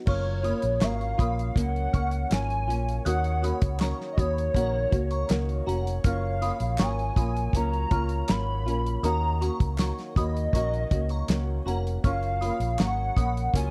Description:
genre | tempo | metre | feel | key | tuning
indie pop, bedroom pop | 80 BPM | 4/4 | straight | F# major | A4 = 440 Hz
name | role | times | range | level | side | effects
nylon-string guitar | accompaniment | 0.0-13.7 s | D#3 to F#4 | -35 LUFS | equal | lush chorus, vibrato effect
hollow clarinet-like synth lead | melody | 0.1-13.7 s | C#5 to B5 | -33 LUFS | equal | analog chorus, slapback echo
glassy synth bell | second line | 0.1-13.3 s | F#5 to F#6 | -40 LUFS | equal | ensemble chorus, slapback echo
warm French horn section | sustained chords | 0.1-13.7 s | F#3 to C#5 | -43 LUFS | equal | none
vintage muted fingered electric bass | bass | 0.1-13.7 s | E#1 to D#2 | -31 LUFS | equal | none
damped 70s drum kit | drums | 0.1-13.7 s | crash cymbal, hi-hat, kick drum, snare drum | -28 LUFS | equal | none
group handclap | percussion | 0.8-13.0 s | none | -42 LUFS | equal | none
room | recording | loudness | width
little or no reverb | dry, close 1970s-style studio recording | -26 LUFS | mono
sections
0.1-13.7 A section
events
none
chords
0.1 F#maj7; 3.1 D#m7; 6.0 F#maj7; 9.0 D#m7; 12.0 F#maj7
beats
| 0.07 0.82 1.56 2.31 | 3.06 3.81 4.55 5.30 | 6.05 6.79 7.54 8.29 | 9.04 9.79 10.54 11.29 | 12.04 12.79 13.54

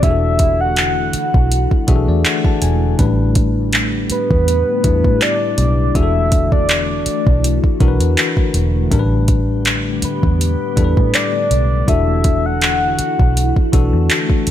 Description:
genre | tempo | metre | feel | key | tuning
contemporary R&B | 81 BPM | 4/4 | swing 54% on 16ths | unclear | A4 = 439 Hz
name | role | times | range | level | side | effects
soft octave-layered synth lead | melody | 0.0-13.6 s | B4 to F#5 | -19 LUFS | left 1 dB | chorus, ping-pong delay
bell-like tine electric piano | accompaniment | 0.0-14.5 s | A2 to A5 | -21 LUFS | left 5 dB | fast stereo tremolo
glassy FM pad | sustained chords | 0.0-14.5 s | D3 to G4 | -25 LUFS | equal | ensemble chorus, built-in reverb, phaser, sidechain pumping
vintage muted fingered electric bass | bass | 0.0-14.5 s | E1 to A2 | -17 LUFS | right 1 dB | none
smooth R&B drum kit | drums | 0.0-14.5 s | handclaps, hi-hat, kick drum | -16 LUFS | right 1 dB | none
room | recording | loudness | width
little or no reverb | none | -13 LUFS | side -11 dB against mid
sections
0.0-14.5 A section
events
tine electric piano fill 1.5-3.0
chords
0.0 E9sus4; 3.0 A9sus4; 6.0 E9sus4; 8.9 A9sus4; 11.9 E9sus4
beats
| 0.03 0.77 1.51 2.25 | 2.99 3.73 4.47 5.21 | 5.95 6.69 7.43 8.18 | 8.92 9.66 10.40 11.14 | 11.88 12.62 13.36 14.10

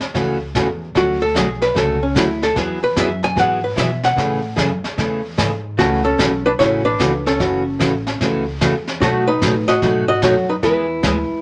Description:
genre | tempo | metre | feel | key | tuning
country, western swing | 149 BPM | 4/4 | swing 65% on 8ths | A major | A4 = 440 Hz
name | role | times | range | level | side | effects
upright bass | bass | 0.0-11.3 s | F#1 to B2 | -28 LUFS | equal | none
vintage brush drum kit | drums | 0.0-11.4 s | brushed snare drum, hi-hat, kick drum, snare drum | -25 LUFS | equal | none
picked steel-string acoustic guitar | accompaniment | 0.1-11.2 s | B2 to G#4 | -23 LUFS | equal | none
archtop guitar, miked and amplified | melody | 1.0-11.4 s | A3 to G#5 | -20 LUFS | equal | none
room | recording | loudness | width
wet small room ambience, RT60 0.5 s | none | -18 LUFS | mono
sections
0.0-5.8 A section; 5.8-11.4 B section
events
hollow-body jazz guitar solo 0.0-5.8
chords
0.0 A6; 0.9 Dmaj7; 2.6 Eadd9; 4.2 Amaj7; 5.8 A6; 7.4 F#m7; 9.0 B7; 10.6 E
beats
0.14 0.54 | 0.95 1.35 1.75 2.16 | 2.56 2.96 3.37 3.77 | 4.17 4.58 4.98 5.38 | 5.79 6.19 6.59 7.00 | 7.40 7.80 8.21 8.61 | 9.01 9.42 9.82 10.22 | 10.63 11.03

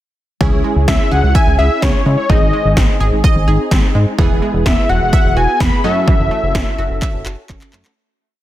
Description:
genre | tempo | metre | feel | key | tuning
synth-pop | 127 BPM | 4/4 | straight | unclear | A4 = 439 Hz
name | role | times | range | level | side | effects
funky polysynth comp | accompaniment | 0.4-7.9 s | B3 to A4 | -22 LUFS | right 1 dB | chorus
analog pluck | arpeggios | 0.4-7.9 s | D#3 to E5 | -24 LUFS | right 4 dB | chorus, digital delay
chorused synth bass | bass | 0.4-7.8 s | E1 to C#3 | -16 LUFS | equal | none
80s electronic pad drums | drums | 0.4-8.0 s | handclaps, kick drum, snare drum | -15 LUFS | equal | overdrive
wide unison lead | melody | 0.9-7.7 s | C#5 to B5 | -18 LUFS | left 2 dB | digital delay
room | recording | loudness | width
light reverb | dense, heavily limited modern master | -11 LUFS | side -14 dB against mid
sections
0.4-8.0 verse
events
fade-out 6.1-8.0; drum fill 7.0-8.0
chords
0.4 C#m; 2.3 G#; 4.2 Eadd9; 5.8 F#m7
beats
| 0.41 0.88 1.35 1.82 | 2.30 2.77 3.24 3.71 | 4.19 4.66 5.13 5.60 | 6.08 6.55 7.02 7.49

